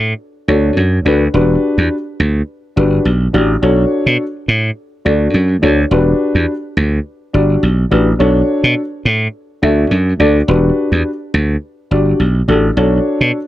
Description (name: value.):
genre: early-eighties boogie funk.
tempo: 105 BPM.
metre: 4/4.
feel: straight.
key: E minor.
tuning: A4 = 440 Hz.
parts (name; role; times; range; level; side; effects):
slap bass; bass; 0.0-13.3 s; E1 to B2; -13 LUFS; right 1 dB; none.
dark concert grand piano; accompaniment; 0.5-13.4 s; D4 to E5; -15 LUFS; left 1 dB; none.
room: little or no reverb.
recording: none.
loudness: -12 LUFS.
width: side -14 dB against mid.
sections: 0.0-13.5 A section.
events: none.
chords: 0.0 Bm9 (rootless); 1.3 Em9; 3.6 Bm9; 5.9 Em9; 8.2 Bm9; 10.5 Em9; 12.8 Bm9.